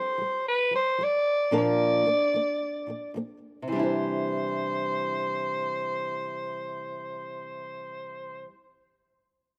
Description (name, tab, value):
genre	pop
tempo	111 BPM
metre	4/4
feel	swing 55% on 16ths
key	C major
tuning	A4 = 440 Hz
part	raspy soprano saxophone	melody	0.0-8.5 s	B4 to D5	-30 LUFS	equal	none
part	nylon-string guitar	accompaniment	0.0-8.6 s	Bb2 to C5	-32 LUFS	equal	none
room	light reverb, small room reverb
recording	rough home demo mix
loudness	-28 LUFS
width	mono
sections	0.0-3.7 A section; 3.7-8.0 B section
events	none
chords	0.0 Fsus2; 1.5 Bb; 3.7 Cadd9